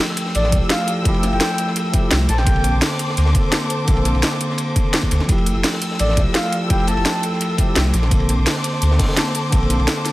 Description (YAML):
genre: liquid drum and bass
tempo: 170 BPM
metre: 4/4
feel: straight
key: F major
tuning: A4 = 440 Hz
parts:
  - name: bell-like tine electric piano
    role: accompaniment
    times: 0.0-10.1 s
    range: D3 to A4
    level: -23 LUFS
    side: equal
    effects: phaser, digital delay
  - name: dark chamber string section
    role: sustained chords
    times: 0.0-10.1 s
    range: A4 to E6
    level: -27 LUFS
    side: left 1 dB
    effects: sidechain pumping
  - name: crunchy breakbeat drum kit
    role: drums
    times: 0.0-10.1 s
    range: hi-hat, ride cymbal, snare drum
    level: -28 LUFS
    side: equal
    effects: high-pass filter on cymbals, high-pass filter on hats, high-pass filter on snare, high-pass filter on room
  - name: drum and bass drum kit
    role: drums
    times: 0.2-10.1 s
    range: hi-hat, snare drum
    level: -22 LUFS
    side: equal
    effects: overdrive
  - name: breathy flute-like synth lead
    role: melody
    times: 0.3-2.7, 6.0-7.2 s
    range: D5 to A5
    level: -25 LUFS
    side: equal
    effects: chorus, digital delay
  - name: warm sub bass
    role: bass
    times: 0.3-9.9 s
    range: F1 to D2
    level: -19 LUFS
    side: equal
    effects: none
  - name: electronic kick drum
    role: drums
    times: 0.5-9.6 s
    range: none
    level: -18 LUFS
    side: equal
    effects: overdrive
room: studio reverb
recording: none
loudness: -16 LUFS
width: side -17 dB against mid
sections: 0.0-10.1 A section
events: none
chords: 0.0 Fmaj9; 2.3 Bbmaj9; 5.3 Fmaj9; 7.9 Bbmaj9